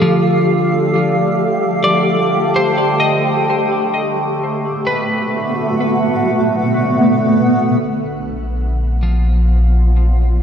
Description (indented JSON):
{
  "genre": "ambient",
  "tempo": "free time",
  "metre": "none",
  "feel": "none",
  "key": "unclear",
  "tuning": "A4 = 440 Hz",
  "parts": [
    { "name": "granular cloud pad", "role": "sustained chords", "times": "0.0-10.4 s", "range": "F3 to G5", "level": "-16 LUFS", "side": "equal", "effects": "built-in reverb, shimmer reverb" },
    { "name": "twelve-string electric guitar", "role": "arpeggios", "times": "0.0-10.4 s", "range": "F3 to Eb5", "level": "-19 LUFS", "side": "left 1 dB", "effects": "vibrato effect, analog delay, shimmer reverb" },
    { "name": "overtone-sweeping drone", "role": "drone", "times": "0.0-7.9 s", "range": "D3 to A3", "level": "-21 LUFS", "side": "equal", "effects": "chorus, built-in reverb" },
    { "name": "round analog bass", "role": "bass", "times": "7.8-10.4 s", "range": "Bb1", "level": "-13 LUFS", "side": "equal", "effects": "tube saturation" }
  ],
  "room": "wet plate reverb, RT60 3.4 s",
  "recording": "echo-heavy mix",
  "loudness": "-13 LUFS",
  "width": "side -8 dB against mid",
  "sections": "0.0-7.8 A section; 7.8-10.4 B section",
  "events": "none",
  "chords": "0.3 Ebmaj7; 4.1 Bm7; 7.8 Bb",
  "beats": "free time"
}